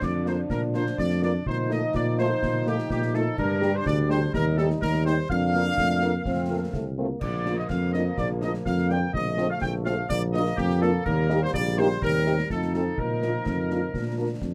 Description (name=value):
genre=military-style march for wind band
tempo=125 BPM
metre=2/4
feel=straight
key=Bb major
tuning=A4 = 445 Hz
part: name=bright trumpet section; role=melody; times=0.0-14.4 s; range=G4 to G5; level=-35 LUFS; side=equal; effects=none
part: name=clear woodwind section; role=second line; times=0.0-14.4 s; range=G4 to G5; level=-33 LUFS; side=equal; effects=none
part: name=bright trombone section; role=sustained chords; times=0.0-14.5 s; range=F3 to Eb4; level=-35 LUFS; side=equal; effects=none
part: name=mellow tuba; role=bass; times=0.0-14.5 s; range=Bb1 to Bb2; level=-29 LUFS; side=equal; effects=none
part: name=concert snare drum, concert bass drum and clash cymbals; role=drums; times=0.0-14.5 s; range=none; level=-36 LUFS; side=equal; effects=none
part: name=warm French horn section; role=accompaniment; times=0.3-14.3 s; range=G3 to G4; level=-30 LUFS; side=equal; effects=none
part: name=mellow euphonium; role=second line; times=5.8-7.2 s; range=A3 to C4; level=-35 LUFS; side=equal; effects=none
room=little or no reverb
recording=none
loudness=-25 LUFS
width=mono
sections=0.0-14.5 A section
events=none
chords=0.0 Bb; 1.5 F7/Bb; 3.4 G5; 4.3 Eb6; 5.3 Bb/F; 6.3 F; 7.2 Bb; 9.1 F/Bb; 10.1 Bb; 11.1 Eb; 12.0 Cm/Eb; 12.5 F7; 13.0 Bb